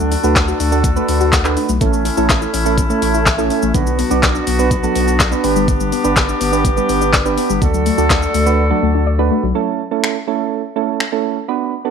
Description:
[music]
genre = dance-pop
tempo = 124 BPM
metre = 4/4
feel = straight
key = unclear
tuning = A4 = 443 Hz
[part]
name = soft electric-piano-like synth keys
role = accompaniment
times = 0.0-11.9 s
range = A3 to D5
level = -19 LUFS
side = right 12 dB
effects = chorus, sidechain pumping
[part]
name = warm woodwind section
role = sustained chords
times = 0.0-9.5 s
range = D3 to A4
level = -20 LUFS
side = left 2 dB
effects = sidechain pumping
[part]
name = soft round pluck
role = arpeggios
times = 0.0-9.5 s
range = D3 to F#5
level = -22 LUFS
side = left 15 dB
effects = chorus, sidechain pumping, slapback echo
[part]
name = saturated sub bass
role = bass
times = 0.0-9.5 s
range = G1 to D2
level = -19 LUFS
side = left 1 dB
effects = sidechain pumping
[part]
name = smooth R&B drum kit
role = drums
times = 0.0-11.1 s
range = finger snaps, handclaps, hi-hat, kick drum, shaker, snare drum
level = -17 LUFS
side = left 1 dB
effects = none
[sound]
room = light reverb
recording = 1960s-style stereo with parts hard left and right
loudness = -13 LUFS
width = side -7 dB against mid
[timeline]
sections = 0.0-9.6 A section; 9.6-11.9 B section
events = drums muted 8.6-9.6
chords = 0.0 D; 1.8 A; 3.7 Bm; 5.4 G; 7.6 D; 9.6 A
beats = 0.36 0.84 1.33 | 1.81 2.29 2.78 3.26 | 3.75 4.23 4.71 5.20 | 5.68 6.17 6.65 7.13 | 7.62 8.10 8.58 9.07 | 9.55 10.04 10.52 11.00 | 11.49

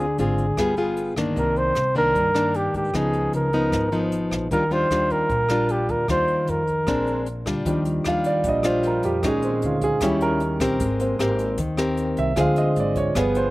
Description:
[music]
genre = bossa nova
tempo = 153 BPM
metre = 4/4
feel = straight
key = Eb major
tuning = A4 = 441 Hz
[part]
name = mellow flugelhorn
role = melody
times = 0.0-7.3 s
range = G4 to C5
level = -22 LUFS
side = right 1 dB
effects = none
[part]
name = nylon-string guitar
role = accompaniment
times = 0.0-13.5 s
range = G2 to Bb4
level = -23 LUFS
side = left 2 dB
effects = none
[part]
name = upright bass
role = bass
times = 0.0-13.5 s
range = G1 to Ab2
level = -29 LUFS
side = equal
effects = none
[part]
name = jazz brush drum kit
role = drums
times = 0.2-13.4 s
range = hi-hat, kick drum, rim click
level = -32 LUFS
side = equal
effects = none
[part]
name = clear concert grand piano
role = accompaniment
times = 7.7-13.5 s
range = Eb3 to F5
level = -23 LUFS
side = right 2 dB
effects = slapback echo
[sound]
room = little or no reverb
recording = recorded outdoors, with no room sound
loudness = -20 LUFS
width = side -19 dB against mid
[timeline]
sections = 0.0-7.7 A section; 7.7-13.5 B section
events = grand piano solo 7.7-13.5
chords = 0.0 Dm7b5; 0.6 G7b9; 1.4 Cm9; 2.9 Db9; 4.5 Ebmaj9; 6.9 Bb9; 7.7 Ebmaj9; 9.2 Bbm7; 10.0 Eb7b9; 10.8 Abmaj9; 12.4 Dm7b5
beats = 0.19 0.58 0.98 | 1.37 1.76 2.16 2.55 | 2.94 3.34 3.73 4.12 | 4.52 4.91 5.30 5.70 | 6.09 6.48 6.88 7.27 | 7.66 8.05 8.45 8.84 | 9.23 9.62 10.02 10.41 | 10.80 11.20 11.59 11.98 | 12.37 12.77 13.16

